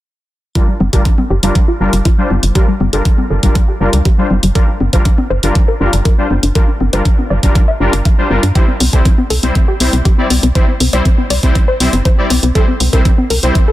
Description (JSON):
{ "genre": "progressive house", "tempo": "120 BPM", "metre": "4/4", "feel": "straight", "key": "G dorian", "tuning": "A4 = 437 Hz", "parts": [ { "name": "analog pluck", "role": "arpeggios", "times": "0.6-13.7 s", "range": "G3 to F5", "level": "-19 LUFS", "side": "left 2 dB", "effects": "chorus, sidechain pumping, digital delay" }, { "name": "soft supersaw", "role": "stabs", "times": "0.6-13.6 s", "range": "G3 to D5", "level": "-18 LUFS", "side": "left 1 dB", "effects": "sidechain pumping, low-pass filter, digital delay" }, { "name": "electronic hi-hat", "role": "drums", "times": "0.6-13.7 s", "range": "none", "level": "-19 LUFS", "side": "equal", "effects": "none" }, { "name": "electronic kick drum", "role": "drums", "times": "0.6-13.7 s", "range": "none", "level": "-11 LUFS", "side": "equal", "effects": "overdrive" }, { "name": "tight sequencer bass", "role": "bass", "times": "0.8-13.5 s", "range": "G1 to G2", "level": "-14 LUFS", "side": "equal", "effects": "sidechain pumping" }, { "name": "congas", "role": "percussion", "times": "0.8-13.3 s", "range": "none", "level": "-21 LUFS", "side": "left 3 dB", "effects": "sidechain pumping on perc" } ], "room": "little or no reverb", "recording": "dense, heavily limited modern master", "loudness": "-10 LUFS", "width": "side -15 dB against mid", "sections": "0.6-13.7 A section", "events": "filter sweep on analog synth bass 0.6-13.7; filter sweep on synth arpeggio sound 0.6-13.7; filter sweep on supersaw synth 0.6-13.7", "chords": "0.6 Gm7; 8.6 C" }